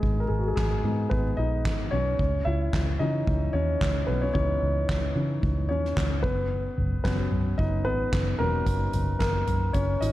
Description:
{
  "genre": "piano-driven pop",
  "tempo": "111 BPM",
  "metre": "4/4",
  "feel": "swing 56% on 16ths",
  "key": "unclear",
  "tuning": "A4 = 445 Hz",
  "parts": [
    { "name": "dark grand piano", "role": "accompaniment", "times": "0.0-10.1 s", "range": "E3 to E5", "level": "-28 LUFS", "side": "left 1 dB", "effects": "none" },
    { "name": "vintage muted fingered electric bass", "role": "bass", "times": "0.0-10.1 s", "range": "E1 to C#3", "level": "-27 LUFS", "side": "equal", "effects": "none" },
    { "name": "soft-mallet drum kit", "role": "drums", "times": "0.0-10.1 s", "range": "handclaps, hi-hat, kick drum, snare drum, toms", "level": "-30 LUFS", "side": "equal", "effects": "none" }
  ],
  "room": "light reverb, studio ambience",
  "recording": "dark, warm production",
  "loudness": "-24 LUFS",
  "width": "side -15 dB against mid",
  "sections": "0.0-10.1 A section",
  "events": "grand piano solo 0.0-10.1",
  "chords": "0.0 G#m; 2.2 C#madd9; 6.2 F#sus4"
}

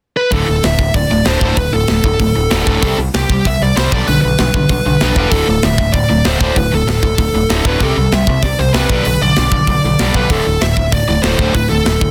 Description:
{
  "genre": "punk rock",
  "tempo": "192 BPM",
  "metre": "4/4",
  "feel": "straight",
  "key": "unclear",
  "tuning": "A4 = 440 Hz",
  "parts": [
    { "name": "high-gain lead guitar", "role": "melody", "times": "0.2-12.1 s", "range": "G4 to E5", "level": "-20 LUFS", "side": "equal", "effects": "distortion" },
    { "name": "distorted electric guitar", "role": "riff", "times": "0.3-12.1 s", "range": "D2 to C4", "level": "-19 LUFS", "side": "equal", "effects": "overdrive" },
    { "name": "growling picked electric bass", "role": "bass", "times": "0.3-12.1 s", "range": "D1 to C2", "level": "-20 LUFS", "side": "equal", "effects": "overdrive" },
    { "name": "tight metal drum kit", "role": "drums", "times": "0.3-12.1 s", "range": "hi-hat, kick drum, snare drum", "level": "-20 LUFS", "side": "equal", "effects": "none" }
  ],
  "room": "light reverb",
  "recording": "dense, heavily limited modern master",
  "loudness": "-14 LUFS",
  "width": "mono",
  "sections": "0.3-12.1 A section",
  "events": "none",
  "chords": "0.3 D5; 2.8 C5; 3.9 G/B; 5.3 D5; 7.8 C; 8.9 G/B; 10.3 D5"
}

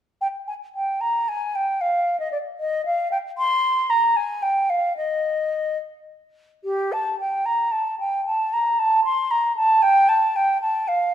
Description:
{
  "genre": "classical, baroque-style fantasia for unaccompanied flute",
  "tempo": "75 BPM (dotted quarters)",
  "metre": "6/8",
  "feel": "rubato",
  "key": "Eb major",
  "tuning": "A4 = 438 Hz",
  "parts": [
    { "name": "mellow concert flute", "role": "solo", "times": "0.2-11.1 s", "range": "G4 to C6", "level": "-19 LUFS", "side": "equal", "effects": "none" }
  ],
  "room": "moderate recital hall reverb, RT60 1.4 s",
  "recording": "none",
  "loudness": "-19 LUFS",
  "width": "side -10 dB against mid",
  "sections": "0.2-11.1 A section",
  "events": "none",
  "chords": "none"
}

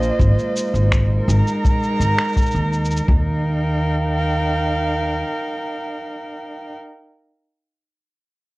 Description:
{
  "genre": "folktronica",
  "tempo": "83 BPM",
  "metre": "4/4",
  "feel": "straight",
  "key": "Eb major",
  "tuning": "A4 = 435 Hz",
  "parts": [
    { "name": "dark string quartet", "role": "sustained chords", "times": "0.0-6.7 s", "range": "Ab3 to Bb5", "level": "-22 LUFS", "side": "right 1 dB", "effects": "cassette tape" },
    { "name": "upright bass", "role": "bass", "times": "0.0-5.2 s", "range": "Ab1 to Eb2", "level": "-19 LUFS", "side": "equal", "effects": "tube saturation" },
    { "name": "electronic shaker and finger snaps", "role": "drums", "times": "0.0-3.1 s", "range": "none", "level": "-27 LUFS", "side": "equal", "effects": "cassette tape" },
    { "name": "kick drum", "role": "drums", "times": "0.2-3.2 s", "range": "none", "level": "-18 LUFS", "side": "equal", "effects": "cassette tape" }
  ],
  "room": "light reverb",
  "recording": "home recording on cassette",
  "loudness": "-17 LUFS",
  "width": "side -21 dB against mid",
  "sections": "0.0-3.1 A section; 3.1-6.0 B section",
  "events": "none",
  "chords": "0.2 Absus2; 3.1 Ebadd9"
}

